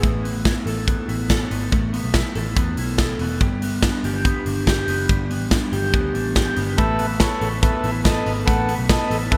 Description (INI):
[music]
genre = jangly indie pop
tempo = 142 BPM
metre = 4/4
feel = straight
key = unclear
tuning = A4 = 440 Hz
[part]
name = electric guitar through a small old amp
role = arpeggios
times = 0.0-9.4 s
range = G3 to A4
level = -27 LUFS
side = equal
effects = analog chorus, analog delay
[part]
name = vintage muted picked electric bass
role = bass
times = 0.0-9.4 s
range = E1 to E2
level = -28 LUFS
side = equal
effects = none
[part]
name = big rock drum kit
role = drums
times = 0.0-9.4 s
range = hi-hat, kick drum, snare drum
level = -24 LUFS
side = equal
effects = none
[part]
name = combo organ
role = accompaniment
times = 6.8-9.4 s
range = A4 to F#5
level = -26 LUFS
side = equal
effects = none
[sound]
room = moderate plate reverb, RT60 2.1 s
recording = dreamy mix soaked in reverb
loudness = -21 LUFS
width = mono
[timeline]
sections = 0.0-9.4 A section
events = none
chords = 0.0 Asus2; 3.4 G; 6.8 Asus2